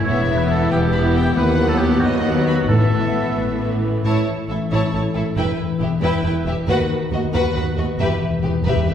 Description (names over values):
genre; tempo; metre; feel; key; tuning
cinematic, heroic adventure film score; 91 BPM (dotted quarters); 6/8; straight; A mixolydian; A4 = 441 Hz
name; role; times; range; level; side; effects
clear symphonic violin section; second line; 0.0-8.9 s; B3 to C#5; -27 LUFS; left 3 dB; none
warm oboe; second line; 0.0-3.4 s; F#4 to C#5; -24 LUFS; right 1 dB; none
rich symphonic viola section; accompaniment; 0.0-8.9 s; E3 to G4; -24 LUFS; right 2 dB; none
mellow French horn section; sustained chords; 0.0-3.8 s; B3 to E4; -25 LUFS; left 4 dB; none
concert harp; arpeggios; 0.0-8.9 s; A2 to B4; -24 LUFS; left 5 dB; none
rich symphonic violin section; melody; 0.1-8.9 s; B4 to B5; -29 LUFS; left 4 dB; none
rich symphonic cello section; bass; 0.1-8.9 s; D#2 to A2; -24 LUFS; right 1 dB; none
rich symphonic double bass section; bass; 0.1-8.9 s; E1 to D#2; -24 LUFS; right 2 dB; none
timpani; percussion; 2.7-3.3, 8.0-8.9 s; E2 to A2; -24 LUFS; equal; none
room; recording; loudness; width
wet scoring stage reverb, RT60 1.5 s; heard from further back in the room; -16 LUFS; side -9 dB against mid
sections
0.0-4.0 A section; 4.0-8.9 B section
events
timpani fill 8.0-8.9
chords
0.1 Em; 1.4 B/D#; 2.7 Asus2; 4.0 A; 5.4 Em; 6.7 B/D#; 8.0 Em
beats
| 0.06 0.71 | 1.36 2.02 | 2.69 3.37 | 4.05 4.71 | 5.37 6.03 | 6.68 7.34 | 8.00 8.67